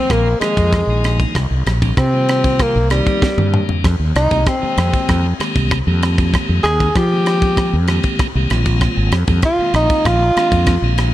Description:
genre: electric jazz fusion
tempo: 96 BPM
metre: 4/4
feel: straight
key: F dorian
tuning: A4 = 440 Hz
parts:
  - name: warm tenor saxophone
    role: melody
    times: 0.0-11.0 s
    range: G3 to Ab4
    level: -18 LUFS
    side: equal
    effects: none
  - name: tonewheel organ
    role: accompaniment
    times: 0.0-11.1 s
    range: Eb3 to G4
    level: -23 LUFS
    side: equal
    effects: slow rotary speaker
  - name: mellow fretless electric bass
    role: bass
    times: 0.1-11.1 s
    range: Ab1 to F3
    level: -16 LUFS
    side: equal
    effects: none
  - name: tight funk drum kit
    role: drums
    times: 0.1-11.1 s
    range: kick drum, ride cymbal, rim click, snare drum, toms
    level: -19 LUFS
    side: equal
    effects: none
room: small room reverb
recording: dark, warm production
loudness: -13 LUFS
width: side -14 dB against mid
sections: 0.0-11.1 A section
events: tenor saxophone solo 0.0-11.1; drum fill 3.2-3.8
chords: 0.0 Bb7sus4; 1.4 Cm7; 3.8 Fm11; 8.5 Bb7sus4

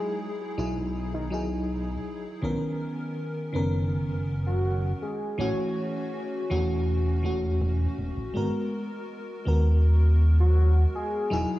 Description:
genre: vaporwave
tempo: 81 BPM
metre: 4/4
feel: straight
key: G# minor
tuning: A4 = 441 Hz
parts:
  - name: warm velvety synth lead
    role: melody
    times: 0.0-6.0, 10.4-11.4 s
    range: D#4 to C#5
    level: -34 LUFS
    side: left 1 dB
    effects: chorus, tremolo, tape echo
  - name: FM electric piano with soft pad layer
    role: accompaniment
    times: 0.0-11.6 s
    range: D#3 to A#4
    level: -30 LUFS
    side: equal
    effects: tremolo, analog chorus, analog delay
  - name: chorused synth bass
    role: bass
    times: 0.6-11.4 s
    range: E1 to D#2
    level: -24 LUFS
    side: equal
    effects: tube saturation
room: light reverb, digital ambience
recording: cassette tape, small room ambience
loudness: -24 LUFS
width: side -16 dB against mid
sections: 0.0-8.4 A section; 8.4-11.6 A section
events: none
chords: 0.0 Emaj9; 2.4 Bmaj9; 5.0 A6; 8.4 G#m9

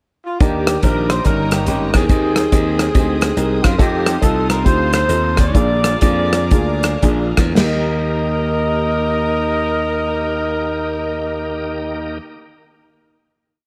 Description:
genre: uptempo gospel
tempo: 106-142 BPM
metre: 4/4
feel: swing 64% on 8ths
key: Eb major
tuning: A4 = 440 Hz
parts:
  - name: breathy trumpet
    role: melody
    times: 0.3-12.2 s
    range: F4 to Eb5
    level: -25 LUFS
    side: equal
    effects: none
  - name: warm saxophone section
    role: melody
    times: 0.3-12.2 s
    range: Bb3 to D5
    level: -27 LUFS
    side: equal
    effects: none
  - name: dark upright piano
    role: accompaniment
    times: 0.4-12.2 s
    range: Eb2 to Ab5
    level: -24 LUFS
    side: equal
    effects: none
  - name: bright tonewheel organ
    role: sustained chords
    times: 0.4-12.2 s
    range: D3 to G5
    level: -31 LUFS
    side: equal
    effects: slow rotary speaker, chorus vibrato
  - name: rich studio string section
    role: sustained chords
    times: 0.4-12.2 s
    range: G4 to Eb6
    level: -36 LUFS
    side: equal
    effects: none
  - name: glassy slap bass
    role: bass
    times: 0.4-12.2 s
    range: G1 to Gb2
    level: -23 LUFS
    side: equal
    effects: none
  - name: natural country drum kit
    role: drums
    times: 0.4-7.7 s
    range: crash cymbal, hi-hat, kick drum, rim click, snare drum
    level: -19 LUFS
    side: equal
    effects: none
room: light reverb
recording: none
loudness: -17 LUFS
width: mono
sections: 0.0-0.4 pickup bar; 0.4-7.6 breakdown; 7.6-12.1 final chord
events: slowing down 3.8-7.6; upright piano fill 6.8-7.6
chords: 0.4 Ebmaj7; 1.2 Eb7/G; 2.1 Abmaj7/Eb; 3.8 F7; 5.5 Bb7; 7.6 Eb

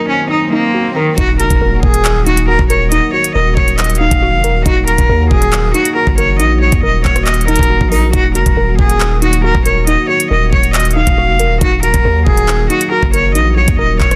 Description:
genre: hip hop, drill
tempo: 138 BPM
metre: 4/4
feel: half-time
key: Eb minor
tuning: A4 = 441 Hz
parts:
  - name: clear cello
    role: melody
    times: 0.0-14.2 s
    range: Eb3 to F5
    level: -17 LUFS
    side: equal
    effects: low-pass filter, delay
  - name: warbly dusty pluck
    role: accompaniment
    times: 0.0-14.2 s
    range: Eb4 to Eb6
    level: -22 LUFS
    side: equal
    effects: chorus, low-pass filter
  - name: dark analog pad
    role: sustained chords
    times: 0.0-14.2 s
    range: Eb3 to Gb4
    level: -25 LUFS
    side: equal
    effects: chorus
  - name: swell and impact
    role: sound effects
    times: 0.2-2.9 s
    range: none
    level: -27 LUFS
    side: equal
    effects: none
  - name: long sustained 808-style bass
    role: bass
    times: 1.2-14.2 s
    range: Eb1 to Eb2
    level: -17 LUFS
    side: equal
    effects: none
  - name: drill drum kit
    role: drums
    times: 1.2-14.2 s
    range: handclaps, hi-hat, kick drum, rim click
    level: -17 LUFS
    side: equal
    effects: none
room: digital ambience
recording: dense, heavily limited modern master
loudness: -12 LUFS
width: mono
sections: 0.0-1.2 A section; 1.2-14.2 B section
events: swell 0.2-1.2; impact 1.2-2.9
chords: 0.0 Ebm

